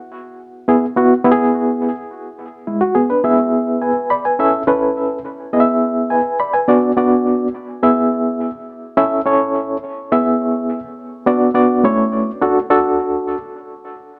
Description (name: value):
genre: soul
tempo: 105 BPM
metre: 4/4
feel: straight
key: E mixolydian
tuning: A4 = 440 Hz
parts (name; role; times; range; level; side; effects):
- barky reed electric piano; solo; 0.7-13.4 s; G#3 to B5; -17 LUFS; equal; overdrive, fast tremolo, tape echo
room: moderate studio reverb, RT60 0.8 s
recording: dark, warm production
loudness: -16 LUFS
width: mono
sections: 0.0-3.2 A section; 3.2-12.4 B section; 12.4-14.2 A section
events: none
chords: 0.0 E; 4.4 A; 5.5 E; 6.7 Bm; 7.8 E; 9.0 A; 10.1 E; 11.3 Bm; 11.8 A; 12.4 D